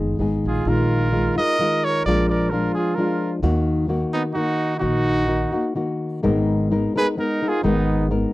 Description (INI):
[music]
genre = mexican folk, mariachi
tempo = 130 BPM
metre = 3/4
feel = swing 54% on 8ths, rubato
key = unclear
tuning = A4 = 441 Hz
[part]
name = nylon-string guitar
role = accompaniment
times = 0.0-8.3 s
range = Ab2 to Bb4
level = -21 LUFS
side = left 2 dB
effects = none
[part]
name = upright bass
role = bass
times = 0.0-8.2 s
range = Gb1 to Eb2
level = -24 LUFS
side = right 1 dB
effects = none
[part]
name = clear trumpet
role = melody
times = 0.5-8.1 s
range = Eb4 to Eb5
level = -24 LUFS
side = right 1 dB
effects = none
[part]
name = warm trumpet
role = second line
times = 0.5-8.1 s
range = Cb4 to Bb4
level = -27 LUFS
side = right 5 dB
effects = none
[sound]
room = little or no reverb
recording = dry, close 1970s-style studio recording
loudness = -18 LUFS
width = side -18 dB against mid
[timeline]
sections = 0.0-6.2 A section; 6.2-8.3 B section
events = none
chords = 0.0 Abm; 0.7 Bb7sus4; 2.1 Bb7; 3.4 Ebm; 6.2 Abmadd9